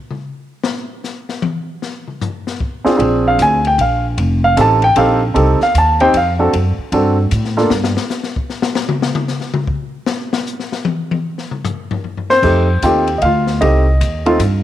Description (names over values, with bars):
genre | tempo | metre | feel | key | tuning
jazz piano trio | 153 BPM | 3/4 | swing 64% on 8ths | F mixolydian | A4 = 441 Hz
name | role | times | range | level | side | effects
open jazz drum kit | drums | 0.1-14.5 s | crash cymbal, hi-hat, kick drum, ride cymbal, snare drum, toms | -22 LUFS | left 4 dB | none
warm grand piano | melody | 2.8-7.7, 12.3-14.6 s | A3 to A5 | -13 LUFS | right 1 dB | none
upright bass | bass | 2.9-8.0, 12.4-14.6 s | F1 to A2 | -16 LUFS | equal | none
room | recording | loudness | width
moderate plate reverb, RT60 1.5 s, studio ambience | 1960s-style stereo | -13 LUFS | side -12 dB against mid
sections
0.0-12.4 A section; 12.4-14.6 B section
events
grand piano solo 0.0-12.4; drum solo 0.0-3.0, 7.7-12.4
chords
0.0 N.C.; 2.6 F5; 3.0 Bb7; 4.2 F7; 6.5 D; 7.7 N.C.; 12.4 F7